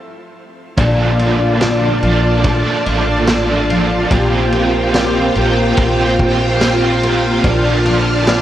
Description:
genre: dream pop.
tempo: 72 BPM.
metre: 4/4.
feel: straight.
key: Bb major.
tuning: A4 = 440 Hz.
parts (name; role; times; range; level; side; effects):
overdriven electric guitar; accompaniment; 0.8-8.4 s; Bb2 to A4; -19 LUFS; right 4 dB; tremolo, ensemble chorus, shimmer reverb.
string machine, violas; sustained chords; 0.8-8.4 s; F4 to A5; -18 LUFS; equal; ensemble chorus, shimmer reverb.
fingerpicked twelve-string acoustic guitar; arpeggios; 0.8-8.4 s; Bb2 to G4; -18 LUFS; left 2 dB; ensemble chorus, tape echo, shimmer reverb.
upright bass; bass; 0.8-8.4 s; A1 to Bb1; -18 LUFS; equal; none.
vintage drum kit; drums; 0.8-8.4 s; kick drum, ride cymbal, snare drum, tambourine; -20 LUFS; equal; none.
room: moderate huge ambient reverb, RT60 7.3 s.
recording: worn, warbling old tape, cassette tape, warbly pitch drift.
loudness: -12 LUFS.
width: side -12 dB against mid.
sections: 0.8-8.4 A section.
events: stop 0.0-0.8.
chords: 0.0 N.C.; 0.8 Bbmaj7; 4.1 C7sus4/Bb; 7.4 Bbmaj7.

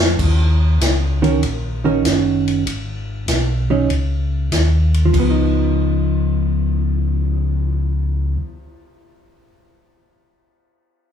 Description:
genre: soul jazz organ trio.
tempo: 97 BPM.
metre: 4/4.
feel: swing 69% on 8ths.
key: Db mixolydian.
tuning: A4 = 440 Hz.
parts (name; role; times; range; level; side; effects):
mellow tonewheel organ; bass; 0.0-8.4 s; Gb1 to F2; -17 LUFS; left 1 dB; slow rotary speaker.
swinging big-band drum kit; drums; 0.2-7.5 s; crash cymbal, cymbal swell, hi-hat, kick drum, ride cymbal, snare drum; -23 LUFS; left 1 dB; none.
hollow-body jazz guitar; accompaniment; 1.2-8.7 s; Eb3 to Bb4; -19 LUFS; right 2 dB; none.
room: wet large studio reverb, RT60 1.0 s.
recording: band playing live in one room.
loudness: -15 LUFS.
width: side -8 dB against mid.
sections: 0.2-5.1 A section; 5.1-7.6 B section.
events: drum fill 0.0.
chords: 0.2 Ebm7; 2.7 Absus4; 5.1 Db9.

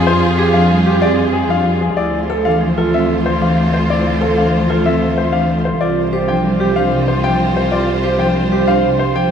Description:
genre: classical, minimalist pattern music.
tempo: 188 BPM.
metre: 6/4.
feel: straight.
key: C major.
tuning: A4 = 440 Hz.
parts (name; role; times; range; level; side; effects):
clear grand piano; melody; 0.0-9.3 s; G4 to G5; -19 LUFS; left 5 dB; none.
rich studio violin section; sustained chords; 0.0-9.3 s; F4 to C5; -23 LUFS; equal; none.
rich cello; bass; 0.0-9.3 s; C2 to F2; -19 LUFS; equal; none.
vibraphone with medium mallets; arpeggios; 0.1-9.3 s; D4 to C5; -20 LUFS; right 5 dB; none.
marimba with soft mallets; accompaniment; 0.5-9.3 s; C3 to D4; -18 LUFS; right 1 dB; none.
room: wet huge ambient reverb, RT60 7.8 s.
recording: in a vast, echoing space.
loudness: -12 LUFS.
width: side -8 dB against mid.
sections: 0.0-9.3 A section.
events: none.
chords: 0.0 Fmadd9; 2.0 Dm7; 5.8 Csus4.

